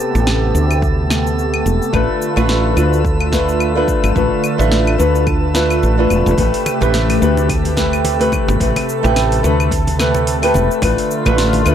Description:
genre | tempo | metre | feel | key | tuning
sunset chillout | 108 BPM | 4/4 | swing 57% on 16ths | A minor | A4 = 443 Hz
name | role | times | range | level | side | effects
lush unison pad | sustained chords | 0.0-11.7 s | C3 to B4 | -20 LUFS | equal | chorus, phaser
deep house drum kit | drums | 0.0-11.7 s | cabasa, claves, hi-hat, snare drum | -23 LUFS | left 1 dB | overdrive
drifting glass-harmonics texture | texture | 0.0-11.7 s | A4 to A5 | -26 LUFS | right 1 dB | chorus, built-in reverb
woody fretless electric bass | bass | 0.1-11.7 s | E1 to D2 | -16 LUFS | equal | none
electronic kick drum | drums | 0.8-10.9 s | none | -21 LUFS | equal | none
flamenco guitar | accompaniment | 1.9-11.7 s | A3 to B4 | -17 LUFS | moving between left 7 dB and right 2 dB | auto-pan, tape echo
congas | percussion | 6.4-11.6 s | none | -25 LUFS | equal | none
room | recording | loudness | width
little or no reverb | dry, gritty hardware recording | -13 LUFS | side -9 dB against mid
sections
0.0-11.7 A section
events
none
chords
0.0 Am9; 1.9 Bm7b5; 6.4 Am9; 10.8 Bm7b5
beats
0.27 0.83 1.38 | 1.94 2.49 3.05 3.60 | 4.16 4.71 5.27 5.83 | 6.38 6.94 7.49 8.05 | 8.60 9.16 9.71 10.27 | 10.83 11.38

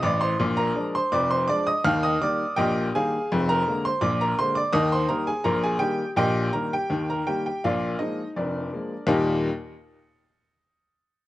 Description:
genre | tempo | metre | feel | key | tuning
ragtime piano | 83 BPM | 2/4 | straight | Eb major | A4 = 440 Hz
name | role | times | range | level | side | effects
clear upright piano | solo | 0.0-9.5 s | F1 to F6 | -22 LUFS | equal | slapback echo
room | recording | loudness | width
little or no reverb | recorded outdoors, with no room sound, nothing above 10.4 kHz | -22 LUFS | side -16 dB against mid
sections
0.0-9.1 A section; 9.1-10.5 B section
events
none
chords
0.4 Bb7; 1.8 Eb; 3.3 Bb7/F; 4.7 Eb; 6.2 Eb/Bb; 7.6 Bb7; 9.1 Eb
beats
| 0.41 1.13 | 1.85 2.57 | 3.29 4.01 | 4.73 5.45 | 6.18 6.90 | 7.62 8.35 | 9.08

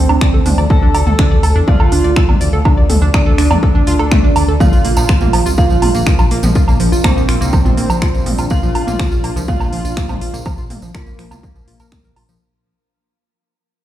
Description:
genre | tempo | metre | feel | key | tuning
melodic techno | 123 BPM | 4/4 | straight | unclear | A4 = 439 Hz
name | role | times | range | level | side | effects
analog synth brass | melody | 0.0-12.3 s | Bb3 to A4 | -21 LUFS | right 3 dB | chorus, sidechain pumping, digital delay
dark detuned synth bell | second line | 0.0-12.3 s | Bb4 to A5 | -27 LUFS | equal | chorus, phaser, sidechain pumping, digital delay
analog pluck | arpeggios | 0.0-12.4 s | F3 to D5 | -21 LUFS | right 2 dB | chorus, sidechain pumping, digital delay
swelling detuned saw bass | bass | 0.0-12.4 s | Bb1 to E2 | -16 LUFS | equal | sidechain pumping
techno drum kit | drums | 0.1-12.3 s | finger snaps, hi-hat, toms, woodblock | -20 LUFS | right 1 dB | sidechain pumping on toms, sidechain pumping on cymbals, sidechain pumping on hats, sidechain pumping on perc
electronic kick drum | drums | 0.2-12.0 s | none | -13 LUFS | equal | overdrive
deep dark ambient pad | sustained chords | 5.4-12.4 s | D4 to F5 | -27 LUFS | equal | chorus, built-in reverb, sidechain pumping
tambourine | percussion | 4.6-12.4 s | none | -31 LUFS | right 3 dB | none
room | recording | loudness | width
little or no reverb | played on a big sound system in a bare room, large studio reverb | -10 LUFS | side -12 dB against mid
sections
0.0-12.4 A section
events
drop 0.0-12.4; fade-out 7.2-12.4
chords
0.0 Dm7; 4.6 Bb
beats
0.21 | 0.70 1.19 1.68 2.17 | 2.65 3.14 3.63 4.12 | 4.60 5.09 5.58 6.07 | 6.55 7.04 7.53 8.02 | 8.51 8.99 9.48 9.97 | 10.46 10.95 11.43 11.92

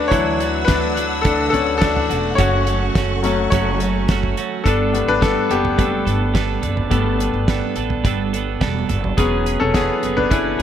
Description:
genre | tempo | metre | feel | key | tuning
piano-driven pop | 106 BPM | 4/4 | straight | unclear | A4 = 440 Hz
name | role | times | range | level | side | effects
clear concert grand piano | accompaniment | 0.0-10.6 s | E3 to C#5 | -20 LUFS | left 4 dB | none
warm studio string section | sustained chords | 0.0-4.6 s | D4 to E6 | -29 LUFS | left 4 dB | none
twelve-string electric guitar | riff | 0.0-10.6 s | F#2 to A4 | -23 LUFS | right 10 dB | none
upright bass | bass | 0.0-10.6 s | E1 to D2 | -23 LUFS | equal | none
damped 70s drum kit | drums | 0.1-10.6 s | hi-hat, kick drum, snare drum, toms | -21 LUFS | right 1 dB | none
room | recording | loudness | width
light reverb, small room ambience | none | -16 LUFS | side -9 dB against mid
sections
0.0-4.6 A section; 4.6-10.6 B section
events
grand piano solo 0.0-4.6, 4.6-10.6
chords
0.0 Dadd9; 2.4 F#m; 4.6 Gadd9; 9.2 E6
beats
| 0.12 0.68 1.25 1.81 | 2.38 2.95 3.51 4.08 | 4.65 5.21 5.78 6.35 | 6.91 7.48 8.04 8.61 | 9.18 9.74 10.31

